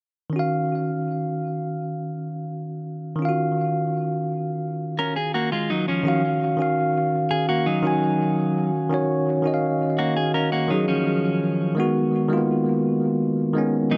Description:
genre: R&B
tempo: 84 BPM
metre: 4/4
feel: straight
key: Eb minor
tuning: A4 = 440 Hz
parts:
  - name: bell-like tine electric piano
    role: accompaniment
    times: 0.3-14.0 s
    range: Eb3 to Ab5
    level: -24 LUFS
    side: equal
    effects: tape echo
  - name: clean electric guitar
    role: arpeggios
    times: 5.0-14.0 s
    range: F3 to Bb4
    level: -27 LUFS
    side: equal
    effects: tape echo
room: moderate plate reverb, RT60 2.6 s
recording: echo-heavy mix, nothing above 10.3 kHz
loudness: -23 LUFS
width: mono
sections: 0.3-6.1 A section; 6.1-14.0 B section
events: none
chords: 0.3 Ebm9; 11.8 Abm7/Eb

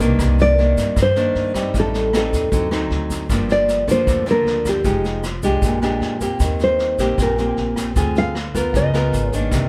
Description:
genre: bossa nova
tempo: 154 BPM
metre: 4/4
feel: straight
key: C minor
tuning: A4 = 440 Hz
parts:
  - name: nylon-string guitar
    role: accompaniment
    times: 0.0-9.7 s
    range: G2 to Bb4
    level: -24 LUFS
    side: equal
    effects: none
  - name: upright bass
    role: bass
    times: 0.0-9.7 s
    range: F1 to G2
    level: -25 LUFS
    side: equal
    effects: none
  - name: vintage brush drum kit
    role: drums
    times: 0.0-9.6 s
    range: kick drum, rim click, snare drum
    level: -27 LUFS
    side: equal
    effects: none
  - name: tube shaker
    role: percussion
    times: 0.0-9.7 s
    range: none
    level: -40 LUFS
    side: equal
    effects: none
  - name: nylon-string guitar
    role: melody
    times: 0.4-9.5 s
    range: G4 to F5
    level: -21 LUFS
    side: equal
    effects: none
room: light reverb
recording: band playing live in one room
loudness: -19 LUFS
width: mono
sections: 0.2-9.7 A section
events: none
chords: 0.2 Cm9; 1.7 Am7b5; 2.5 D7b9; 3.3 Gm7; 4.8 Fm9; 5.6 Bb13; 6.4 Eb6; 8.0 Dm7b5; 8.7 Db13

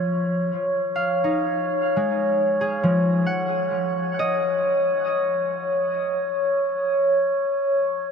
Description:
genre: ambient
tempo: free time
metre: none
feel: none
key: unclear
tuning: A4 = 440 Hz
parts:
  - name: concert harp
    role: arpeggios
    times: 0.0-8.1 s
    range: E#3 to F#5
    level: -25 LUFS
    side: equal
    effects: diffuse ambient delay
  - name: glass harmonica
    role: texture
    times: 0.0-8.1 s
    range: C#5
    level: -21 LUFS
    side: equal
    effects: none
room: wet huge ambient reverb, RT60 8.9 s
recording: none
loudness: -20 LUFS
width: side -6 dB against mid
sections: 0.0-8.1 A section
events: fade-in on harp 0.0-8.1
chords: 0.0 G#5; 3.2 F#5

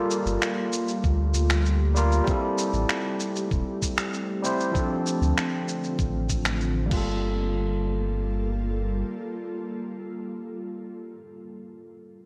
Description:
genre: sunset chillout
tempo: 97 BPM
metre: 4/4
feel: straight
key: G dorian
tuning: A4 = 438 Hz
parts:
  - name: overdriven tine electric piano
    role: accompaniment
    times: 0.0-12.2 s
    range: F3 to C5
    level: -31 LUFS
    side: equal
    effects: low-pass filter, digital delay
  - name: ethereal airy pad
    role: sustained chords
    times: 0.0-10.5 s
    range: D3 to A4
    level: -36 LUFS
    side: equal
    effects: ensemble chorus, built-in reverb
  - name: dusty soul sampler-style drum kit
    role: drums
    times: 0.1-7.0 s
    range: crash cymbal, finger snaps, shaker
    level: -33 LUFS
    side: equal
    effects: studio reverb, gated reverb
  - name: warm sub bass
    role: bass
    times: 0.3-9.0 s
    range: E1 to D2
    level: -28 LUFS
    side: equal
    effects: tube saturation
  - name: electronic kick drum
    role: drums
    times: 1.0-7.0 s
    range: none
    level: -30 LUFS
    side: equal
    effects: studio reverb
room: moderate lush hall reverb, RT60 2.0 s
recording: bright 1980s-style digital production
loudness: -26 LUFS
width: mono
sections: 0.0-7.2 A section; 7.2-9.7 B section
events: filter sweep on tine electric piano 0.0-7.2; filter sweep on ambient pad 0.0-7.2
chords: 0.0 Gm9; 2.3 Am7; 4.7 Dm7; 6.9 Gm9

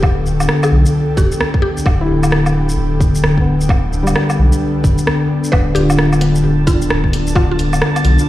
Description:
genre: future garage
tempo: 131 BPM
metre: 4/4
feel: swing 62% on 16ths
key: unclear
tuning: A4 = 440 Hz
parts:
  - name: mallet-like synth pluck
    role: melody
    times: 0.0-2.0, 5.5-7.6 s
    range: F4 to B4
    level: -23 LUFS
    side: equal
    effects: chorus, vintage 12-bit sampler grit, tape echo
  - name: felt-muted upright piano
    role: accompaniment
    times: 0.0-8.3 s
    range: G3 to B4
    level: -24 LUFS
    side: equal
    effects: sidechain pumping, analog delay
  - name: ethereal airy pad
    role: sustained chords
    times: 0.0-8.3 s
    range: D3 to G5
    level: -16 LUFS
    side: left 1 dB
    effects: ensemble chorus, built-in reverb, sidechain pumping
  - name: warm sub bass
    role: bass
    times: 0.0-8.2 s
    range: D1 to B1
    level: -17 LUFS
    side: equal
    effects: sidechain pumping
  - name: electronic kick drum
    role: drums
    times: 0.0-7.5 s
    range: none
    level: -14 LUFS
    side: equal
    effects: none
  - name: garage drum kit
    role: drums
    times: 0.0-8.3 s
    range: hi-hat, rim click, shaker, woodblock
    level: -21 LUFS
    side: equal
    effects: none
  - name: drifting glass-harmonics texture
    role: texture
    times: 6.1-8.3 s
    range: A5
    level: -27 LUFS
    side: right 5 dB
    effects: chorus, built-in reverb
room: little or no reverb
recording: played on a big sound system in a bare room, large studio reverb, vinyl crackle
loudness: -12 LUFS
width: side -15 dB against mid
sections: 0.0-8.3 A section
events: none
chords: 0.0 Dm69

